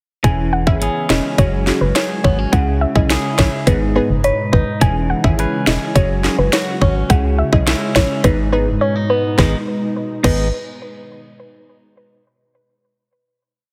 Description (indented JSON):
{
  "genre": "dancehall",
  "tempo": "105 BPM",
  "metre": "4/4",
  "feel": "straight",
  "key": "G# minor",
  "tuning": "A4 = 440 Hz",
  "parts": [
    { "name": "soft round pluck", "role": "melody", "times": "0.2-10.5 s", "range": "B4 to G#5", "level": "-24 LUFS", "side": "equal", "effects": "chorus, delay" },
    { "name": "wavetable chord stab", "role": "accompaniment", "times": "0.2-10.5 s", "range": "B3 to G#4", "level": "-26 LUFS", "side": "equal", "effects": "sidechain pumping" },
    { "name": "glassy FM pad", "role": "sustained chords", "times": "1.0-9.7 s", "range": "B2 to F#4", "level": "-29 LUFS", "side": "equal", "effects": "ensemble chorus, built-in reverb, sidechain pumping" },
    { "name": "clean electric guitar", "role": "arpeggios", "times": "0.2-10.5 s", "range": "G#2 to B4", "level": "-25 LUFS", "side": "equal", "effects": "none" },
    { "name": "organ-like FM bass", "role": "bass", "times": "0.2-10.5 s", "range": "E1 to C#2", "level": "-21 LUFS", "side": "equal", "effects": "none" },
    { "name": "island pop drum kit", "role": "drums", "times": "0.2-10.4 s", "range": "crash cymbal, hi-hat, kick drum, snare drum", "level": "-19 LUFS", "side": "equal", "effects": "none" }
  ],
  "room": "light reverb, digital ambience",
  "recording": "heavily compressed radio sound",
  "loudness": "-16 LUFS",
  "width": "mono",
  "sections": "0.2-9.4 chorus; 9.4-11.7 final chord",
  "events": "silent gap 8.8-9.4",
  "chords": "0.2 E6; 1.4 F#sus2; 2.5 C#m; 3.7 G#m; 4.8 E6; 6.0 F#sus2; 7.1 C#m; 8.2 G#m",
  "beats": "| 0.24 0.81 1.39 1.96 | 2.53 3.10 3.67 4.24 | 4.81 5.38 5.96 6.53 | 7.10 7.67 8.24 8.81 | 9.38 9.96"
}